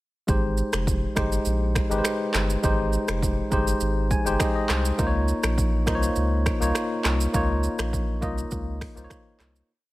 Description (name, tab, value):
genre	afrobeats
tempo	102 BPM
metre	4/4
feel	straight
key	Ab major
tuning	A4 = 440 Hz
part	tine electric piano	accompaniment	0.3-9.7 s	Ab3 to Ab5	-26 LUFS	left 1 dB	medium stereo tremolo
part	saturated sub bass	bass	0.3-9.6 s	F1 to Db2	-26 LUFS	equal	none
part	deep house drum kit	drums	0.3-9.7 s	finger snaps, handclaps, hi-hat, kick drum, rim click, shaker	-27 LUFS	equal	overdrive
room	little or no reverb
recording	none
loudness	-22 LUFS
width	side -18 dB against mid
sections	0.3-9.7 chorus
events	tine electric piano fill 3.8-5.0; fade-out 7.3-9.7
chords	0.3 Abmaj7; 5.0 Db69